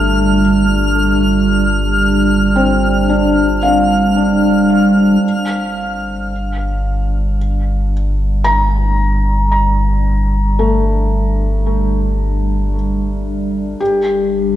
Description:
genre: ambient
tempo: 56 BPM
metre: 4/4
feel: straight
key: G minor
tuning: A4 = 444 Hz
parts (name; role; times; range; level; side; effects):
- warbly tape-like pad; sustained chords; 0.0-14.6 s; G3 to F4; -16 LUFS; right 1 dB; chorus, built-in reverb
- felt-muted upright piano; arpeggios; 0.0-14.6 s; A3 to Bb5; -19 LUFS; left 1 dB; tape echo
- warm sub bass; bass; 0.0-14.6 s; G1; -17 LUFS; equal; none
- twinkling granular texture; texture; 0.0-5.3 s; F6; -20 LUFS; equal; built-in reverb
room: wet echo chamber reverb, RT60 2.2 s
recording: echo-heavy mix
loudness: -12 LUFS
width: side -12 dB against mid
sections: 0.0-5.2 A section; 5.2-14.6 B section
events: fade-in on ambient pad 5.2-14.6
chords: 0.0 G7(no3); 5.2 Gmadd9; 13.8 D5/G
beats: | 0.95 2.02 3.09 4.16 | 5.23 6.30 7.38 8.45 | 9.52 10.59 11.66 12.73 | 13.80

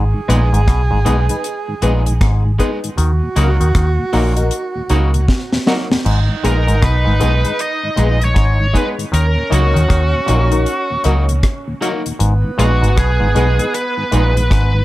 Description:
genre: roots reggae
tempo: 78 BPM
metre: 4/4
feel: swing 62% on 16ths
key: G# minor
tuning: A4 = 440 Hz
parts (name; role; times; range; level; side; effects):
- breathy tenor saxophone; second line; 0.0-14.8 s; B3 to G#4; -24 LUFS; right 4 dB; dub echo, plate reverb
- clav; riff; 0.0-14.7 s; G#2 to D#3; -25 LUFS; left 4 dB; none
- vintage muted fingered electric bass; bass; 0.0-14.8 s; G#1 to D#2; -14 LUFS; equal; none
- mellow tonewheel organ; accompaniment; 0.1-14.8 s; D#2 to D#4; -25 LUFS; equal; chorus vibrato, slow rotary speaker, plate reverb
- electric guitar at the edge of break-up; accompaniment; 0.3-14.4 s; F#3 to G#4; -26 LUFS; right 2 dB; tremolo, dub echo, plate reverb
- filtered dub chord stab; stabs; 0.3-14.4 s; D#4 to B4; -24 LUFS; left 4 dB; phaser, plate reverb
- deep reggae drum kit; drums; 0.3-14.7 s; crash cymbal, hi-hat, kick drum, rim click, snare drum; -18 LUFS; equal; none
- biting lead guitar; melody; 6.5-14.8 s; F#4 to D#5; -20 LUFS; equal; overdrive, dub echo, plate reverb
room: light reverb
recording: none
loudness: -13 LUFS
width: side -16 dB against mid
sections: 0.0-14.8 A section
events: drum fill 5.3-6.1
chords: 0.0 G#m; 3.0 D#m; 6.1 G#m; 9.1 D#m; 12.2 G#m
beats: 0.67 1.44 2.21 | 2.98 3.75 4.52 5.29 | 6.05 6.82 7.59 8.36 | 9.13 9.90 10.67 11.44 | 12.20 12.97 13.74 14.51

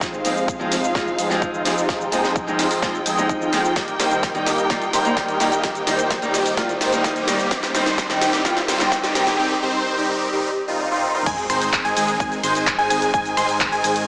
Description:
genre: EDM, festival progressive house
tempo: 128 BPM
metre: 4/4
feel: straight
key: Ab major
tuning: A4 = 440 Hz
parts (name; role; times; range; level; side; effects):
- dark studio string section; sustained chords; 0.0-14.1 s; Eb4 to Ab5; -28 LUFS; equal; sidechain pumping
- supersaw chords; riff; 0.0-14.0 s; Eb3 to C5; -25 LUFS; equal; phaser, lush chorus, sidechain pumping, low-pass filter, tape echo
- fat analog bass; bass; 0.0-14.1 s; Eb1 to F2; -37 LUFS; equal; none
- big-room dance drum kit; drums; 0.0-14.1 s; crash cymbal, finger snaps, handclaps, hi-hat, shaker, snare drum, toms; -27 LUFS; equal; high-pass filter on hats, high-pass filter on snare, high-pass filter on perc, high-pass filter on toms, high-pass filter on cymbals
- electronic kick drum; drums; 0.0-13.7 s; none; -30 LUFS; equal; none
- fingerpicked steel-string acoustic guitar; accompaniment; 0.2-9.2 s; Eb3 to F4; -27 LUFS; equal; sidechain pumping, tape echo
- riser and sub drop; sound effects; 6.5-13.1 s; none; -35 LUFS; equal; none
- unison pluck; arpeggios; 11.3-14.0 s; Ab5 to C6; -25 LUFS; equal; sidechain pumping, tape echo
room: wet lush hall reverb, RT60 1.6 s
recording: high-pass filter, small speaker sound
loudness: -20 LUFS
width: mono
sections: 0.0-11.3 A section; 11.3-14.1 B section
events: build-up 0.0-11.3; drum fill 0.0-9.4, 10.8-11.3; filter sweep on supersaw synth 0.0-11.3; drop 11.3-14.1; impact 11.3-13.1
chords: 0.0 Fm7; 3.8 Eb; 7.5 Cm/Eb; 11.3 Ab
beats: | 0.01 0.48 0.95 1.42 | 1.89 2.36 2.83 3.29 | 3.76 4.23 4.70 5.17 | 5.64 6.11 6.58 7.04 | 7.51 7.98 8.45 8.92 | 9.39 9.86 10.33 10.79 | 11.26 11.73 12.20 12.67 | 13.14 13.61

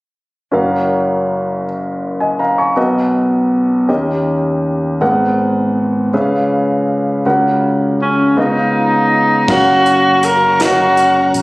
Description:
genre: slow gospel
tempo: 54 BPM (dotted quarters)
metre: 6/8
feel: straight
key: F# major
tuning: A4 = 444 Hz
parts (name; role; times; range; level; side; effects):
- clear concert grand piano; accompaniment; 0.5-11.4 s; F#1 to C#6; -14 LUFS; equal; none
- warm tenor saxophone; melody; 8.0-11.4 s; C#4 to A#4; -11 LUFS; equal; none
- clear studio string section; sustained chords; 9.5-11.4 s; F#4 to C#6; -25 LUFS; equal; none
- tonewheel organ; sustained chords; 9.5-11.4 s; C#3 to A#4; -20 LUFS; equal; slow rotary speaker, overdrive, chorus vibrato
- fingered electric bass; bass; 9.5-11.4 s; F#1 to A#1; -24 LUFS; equal; none
- crisp fusion drum kit; drums; 9.5-11.4 s; crash cymbal, hi-hat, kick drum, snare drum; -22 LUFS; equal; none
room: moderate large studio reverb, RT60 1.1 s, small room ambience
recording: recorded on a phone in the room, studio reverb, compression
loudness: -12 LUFS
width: side -22 dB against mid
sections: 0.5-9.5 A section; 9.5-11.4 B section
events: none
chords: 0.5 F#maj7; 2.8 Bmaj7; 3.9 D#7; 5.0 G#m9; 6.1 C#7; 7.2 F#/C#; 8.4 C#13; 9.5 F#maj7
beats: | 0.53 1.65 | 2.77 3.89 | 5.01 6.13 | 7.25 8.37 | 9.48 10.60

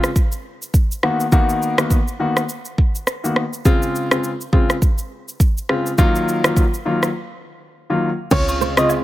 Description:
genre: afrobeats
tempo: 103 BPM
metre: 4/4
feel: swing 58% on 16ths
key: Db major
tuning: A4 = 438 Hz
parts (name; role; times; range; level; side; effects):
- warm grand piano; accompaniment; 0.0-9.0 s; Db3 to Gb4; -20 LUFS; left 2 dB; none
- afro-pop drum kit; drums; 0.0-9.0 s; crash cymbal, kick drum, rim click, shaker; -17 LUFS; equal; none
- soft struck synth lead; melody; 8.3-8.9 s; Db5 to Eb5; -21 LUFS; right 2 dB; chorus, tape echo
- hollow soft pad; sustained chords; 8.7-9.0 s; Db3 to F4; -24 LUFS; right 1 dB; chorus
- kora; riff; 8.3-8.7 s; C5 to Db5; -24 LUFS; right 11 dB; none
- woody log drum bass; bass; 8.3-9.0 s; Db2; -23 LUFS; equal; none
- agogo bells and woodblock; percussion; 8.5-9.0 s; none; -25 LUFS; right 1 dB; none
room: light reverb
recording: none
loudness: -16 LUFS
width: side -15 dB against mid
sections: 0.0-8.3 A section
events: break 7.1-8.3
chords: 0.0 N.C.; 1.0 Cbmaj7; 3.7 Dbmaj7; 6.0 Ebmadd9; 8.3 Dbmaj7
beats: 0.16 0.74 | 1.32 1.91 2.49 3.07 | 3.65 4.24 4.82 5.40 | 5.98 6.57 7.15 7.73 | 8.31 8.90

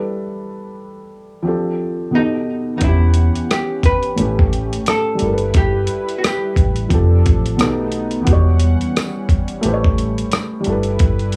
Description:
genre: lo-fi hip hop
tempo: 88 BPM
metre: 4/4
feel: swing 58% on 16ths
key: E dorian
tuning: A4 = 440 Hz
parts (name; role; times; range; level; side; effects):
- felt-muted upright piano; accompaniment; 0.0-11.4 s; A2 to F#5; -24 LUFS; equal; cassette tape, low-pass filter
- archtop guitar, miked and amplified; melody; 2.2-7.9 s; D#4 to B4; -24 LUFS; equal; low-pass filter
- warm analog pad; sustained chords; 2.8-11.4 s; E3 to F#5; -29 LUFS; equal; chorus, low-pass filter
- vintage muted fingered electric bass; bass; 2.8-11.3 s; E1 to B1; -19 LUFS; equal; none
- dusty soul sampler-style drum kit; drums; 2.8-11.4 s; hi-hat, kick drum, rim click; -19 LUFS; equal; overdrive
- tambourine; percussion; 3.5-10.5 s; none; -38 LUFS; equal; none
room: light reverb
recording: small room ambience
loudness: -17 LUFS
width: mono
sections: 0.0-2.8 A section; 2.8-11.4 B section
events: none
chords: 0.0 G6; 1.5 F6; 2.1 B7b13; 2.8 Em69; 4.2 A7; 5.2 G6; 6.9 F6; 7.6 B7b13; 8.3 Em69; 9.6 A7; 10.7 G6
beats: | 0.09 0.78 1.46 2.14 | 2.82 3.50 4.18 4.87 | 5.55 6.23 6.91 7.59 | 8.28 8.96 9.64 10.32 | 11.00

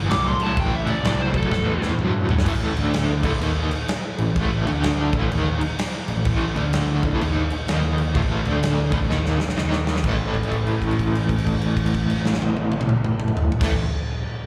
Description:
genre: blues rock power trio and southern rock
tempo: 127 BPM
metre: 4/4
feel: swing 63% on 8ths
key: A minor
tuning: A4 = 440 Hz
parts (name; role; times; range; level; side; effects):
- overdriven semi-hollow guitar; riff; 0.0-13.8 s; A2 to D#4; -26 LUFS; equal; tremolo, slapback echo
- picked electric bass; bass; 0.0-13.8 s; A1 to G2; -27 LUFS; equal; none
- biting lead guitar; second line; 0.1-1.8 s; A4 to D6; -28 LUFS; equal; overdrive, slapback echo
- huge arena drum kit; drums; 0.1-13.7 s; crash cymbal, kick drum, snare drum, toms; -27 LUFS; equal; none
room: light reverb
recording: live gig heard through the venue's PA, club reverb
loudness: -22 LUFS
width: mono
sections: 0.0-2.5 A section; 2.5-10.0 B section; 10.0-13.8 C section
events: lead electric guitar solo 0.0-2.5; drum fill 1.5-2.5, 9.1-10.0; held note 10.0-13.6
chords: 0.0 Am; 2.5 A5; 2.7 D5; 3.2 A5; 4.6 D5; 5.1 A5; 6.5 D5; 7.0 A5; 7.7 D#5; 8.2 A5; 8.4 D5; 8.9 A5; 9.6 D#5; 10.0 A5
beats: 0.11 | 0.58 1.05 1.52 2.00 | 2.47 2.94 3.42 3.89 | 4.36 4.83 5.31 5.78 | 6.26 6.73 7.20 7.68 | 8.15 8.63 9.10 9.57 | 10.05 10.52 11.00 11.47 | 11.94 12.42 12.89 13.37

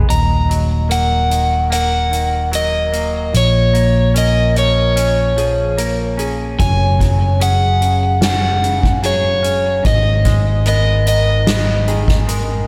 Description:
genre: post-rock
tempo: 74 BPM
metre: 4/4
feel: straight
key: Eb minor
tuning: A4 = 440 Hz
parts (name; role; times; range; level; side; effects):
- electric guitar through a small old amp; arpeggios; 0.0-12.7 s; Ab4 to Eb5; -31 LUFS; equal; analog chorus, digital delay
- twangy electric guitar; arpeggios; 0.0-12.7 s; Eb2 to Db4; -27 LUFS; equal; digital delay
- overdriven semi-hollow guitar; melody; 0.1-12.7 s; Db5 to Bb5; -20 LUFS; equal; digital delay
- fingered electric bass; bass; 0.1-12.7 s; Eb1 to Bb1; -19 LUFS; equal; none
- soft-mallet drum kit; drums; 0.1-12.5 s; hi-hat, kick drum, snare drum; -23 LUFS; equal; none
room: light reverb, studio reverb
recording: none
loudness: -15 LUFS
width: mono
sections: 0.1-12.7 A section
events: none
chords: 0.1 Ebm; 3.3 Bbm7; 6.6 Gbsus2; 9.9 Abm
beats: | 0.09 0.91 1.72 2.53 | 3.34 4.16 4.97 5.79 | 6.60 7.42 8.23 9.04 | 9.86 10.67 11.48 12.29

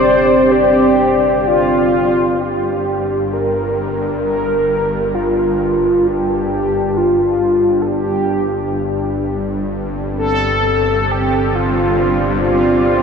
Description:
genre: dark ambient drone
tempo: 66 BPM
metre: 4/4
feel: straight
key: unclear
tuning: A4 = 440 Hz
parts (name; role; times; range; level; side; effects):
- mellow horn-like synth lead; melody; 0.0-13.0 s; F4 to C5; -16 LUFS; equal; wide subtle chorus, tape echo
- dark analog pad; sustained chords; 0.0-13.0 s; G3 to A5; -19 LUFS; right 1 dB; chorus
- bowed-like drone; drone; 0.0-13.0 s; G1 to G2; -21 LUFS; left 1 dB; built-in reverb
- flickering grainy texture; texture; 0.0-2.4 s; none; barely audible; none; none
room: wet huge ambient reverb, RT60 8.0 s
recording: dreamy mix soaked in reverb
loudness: -13 LUFS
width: side -6 dB against mid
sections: 0.0-2.4 A section; 2.4-13.0 B section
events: fade-in on analog synth pad 2.4-13.0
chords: 0.0 C5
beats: 0.51 1.46 | 2.40 3.32 4.25 5.16 | 6.08 6.99 7.89 8.81 | 9.71 10.62 11.54 12.45

